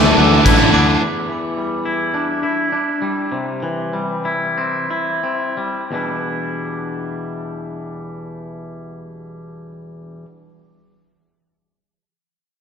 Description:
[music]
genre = post-rock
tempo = 85-108 BPM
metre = 4/4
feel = straight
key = E minor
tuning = A4 = 440 Hz
[part]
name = muted symphonic string section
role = sustained chords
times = 0.0-1.0 s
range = A4 to D6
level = -30 LUFS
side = left 3 dB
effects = none
[part]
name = glockenspiel with brass mallets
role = arpeggios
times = 0.0-1.0 s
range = D6 to E6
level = -28 LUFS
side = right 4 dB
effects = digital delay, slapback echo
[part]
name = twangy electric guitar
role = arpeggios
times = 0.0-10.3 s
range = E2 to E4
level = -21 LUFS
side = left 1 dB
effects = digital delay
[part]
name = biting overdriven guitar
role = riff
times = 0.0-1.0 s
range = D3 to D4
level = -17 LUFS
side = left 9 dB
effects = slapback echo
[part]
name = fuzz guitar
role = riff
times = 0.0-1.0 s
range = D3 to D4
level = -17 LUFS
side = right 10 dB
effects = distortion, slapback echo
[part]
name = fuzz fingered electric bass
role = bass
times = 0.0-1.0 s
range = A1 to D2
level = -17 LUFS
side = equal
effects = overdrive
[part]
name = big rock drum kit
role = drums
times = 0.5-0.6 s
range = crash cymbal, kick drum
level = -19 LUFS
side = equal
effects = none
[sound]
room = wet lush hall reverb, RT60 1.8 s, small room ambience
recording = big arena sound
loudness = -17 LUFS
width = side -7 dB against mid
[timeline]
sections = 0.0-1.0 A section; 1.0-5.9 B section; 5.9-8.8 C section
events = slowing down 1.0-5.9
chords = 0.0 Dsus2; 1.0 Em7; 3.3 C; 5.9 Em7

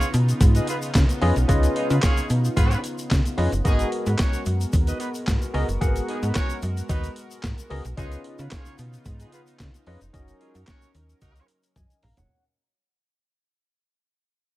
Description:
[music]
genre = early-eighties boogie funk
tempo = 111 BPM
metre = 4/4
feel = straight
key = unclear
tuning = A4 = 440 Hz
[part]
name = dark horn section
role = second line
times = 0.0-11.4 s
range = G#3 to D#5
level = -31 LUFS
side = right 1 dB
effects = none
[part]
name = chorused pulse-width pad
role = sustained chords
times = 0.0-12.3 s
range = C#3 to A#4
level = -33 LUFS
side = right 1 dB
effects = none
[part]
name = breakbeat sampler-style drum kit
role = drums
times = 0.0-12.3 s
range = handclaps, hi-hat, kick drum, snare drum, toms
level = -22 LUFS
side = equal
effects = none
[part]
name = egg shaker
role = percussion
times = 0.0-12.3 s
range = none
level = -40 LUFS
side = left 6 dB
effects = none
[part]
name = slap-like FM bass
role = bass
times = 0.1-12.3 s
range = E#1 to C#3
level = -23 LUFS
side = equal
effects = none
[part]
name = barky tine electric piano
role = accompaniment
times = 1.2-12.4 s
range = A#3 to A#5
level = -27 LUFS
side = left 1 dB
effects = overdrive, analog chorus
[sound]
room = little or no reverb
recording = none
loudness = -20 LUFS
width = side -17 dB against mid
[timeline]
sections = 0.0-12.3 A section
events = fade-out 0.0-12.3; drum fill 11.8-12.3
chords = 0.0 C#9; 3.7 G#m9; 8.0 C#9; 10.1 F#6

